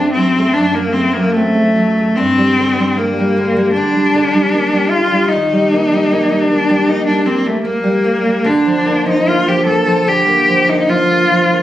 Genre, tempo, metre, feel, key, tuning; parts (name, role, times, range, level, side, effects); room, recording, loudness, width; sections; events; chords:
romantic duo for cello and classical guitar; 75 BPM; 4/4; rubato; G minor; A4 = 440 Hz
clear cello; melody; 0.0-11.6 s; A3 to A4; -13 LUFS; left 1 dB
nylon-string guitar; accompaniment; 0.0-11.6 s; F#2 to C4; -16 LUFS; right 1 dB
light reverb; recorded on a phone in the room, club reverb, compression; -11 LUFS; side -13 dB against mid
0.0-11.6 A section
0.0 D7/F# (rootless); 2.2 Gm; 5.3 Eb; 8.5 Bb/D